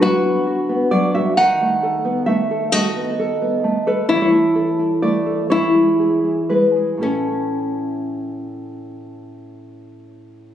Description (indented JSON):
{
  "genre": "romantic duo for nylon-string guitar and classical guitar",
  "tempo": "38-45 BPM (dotted quarters)",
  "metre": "12/8",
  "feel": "rubato",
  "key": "A major",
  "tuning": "A4 = 440 Hz",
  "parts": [
    { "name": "flamenco guitar", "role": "melody", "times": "0.0-10.5 s", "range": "C#4 to F#4", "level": "-19 LUFS", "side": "left 1 dB", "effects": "slapback echo" },
    { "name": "nylon-string guitar", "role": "accompaniment", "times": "0.0-10.5 s", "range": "A2 to F#5", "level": "-18 LUFS", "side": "right 1 dB", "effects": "none" }
  ],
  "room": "moderate recital hall reverb, RT60 1.8 s",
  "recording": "recorded on a phone in the room, club reverb",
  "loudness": "-16 LUFS",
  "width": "side -10 dB against mid",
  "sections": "0.0-10.5 A section",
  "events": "none",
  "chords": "0.0 Bm/D; 1.4 B7/D#; 4.1 A/E; 5.5 E; 7.0 A",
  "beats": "0.02 | 1.36 2.72 4.08 5.50 | 7.02 8.57 10.09"
}